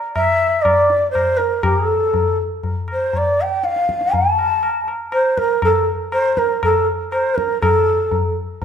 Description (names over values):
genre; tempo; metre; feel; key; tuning
indian classical, Hindustani; 120 BPM; 3/4; straight; unclear; A4 = 438 Hz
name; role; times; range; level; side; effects
breathy mellow bansuri; melody; 0.2-8.3 s; A4 to A5; -16 LUFS; equal; none
tabla; percussion; 0.2-8.6 s; none; -21 LUFS; left 1 dB; none
room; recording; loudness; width
moderate recital hall reverb, RT60 1.6 s; none; -15 LUFS; side -8 dB against mid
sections
0.0-7.6 A section; 7.6-8.6 B section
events
none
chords
none